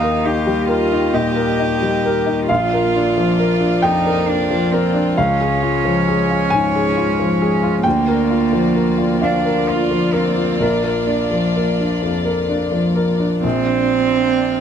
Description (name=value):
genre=neoclassical piano and strings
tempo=44 BPM (dotted quarters)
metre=6/8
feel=rubato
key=Bb major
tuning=A4 = 440 Hz
part: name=warm cello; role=second line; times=0.0-14.6 s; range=Bb3 to G4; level=-20 LUFS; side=right 6 dB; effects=none
part: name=warm baby grand piano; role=accompaniment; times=0.0-14.6 s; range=Bb1 to Ab5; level=-17 LUFS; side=left 2 dB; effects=none
part: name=warm chamber string section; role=sustained chords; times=0.0-14.6 s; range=Ab3 to Eb5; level=-24 LUFS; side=equal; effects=none
room=light reverb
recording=close, detailed microphones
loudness=-15 LUFS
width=side -8 dB against mid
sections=0.0-13.4 A section; 13.4-14.6 B section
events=none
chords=0.0 Eb; 2.5 Bb; 5.2 Db; 7.8 Bb/D; 10.6 Bb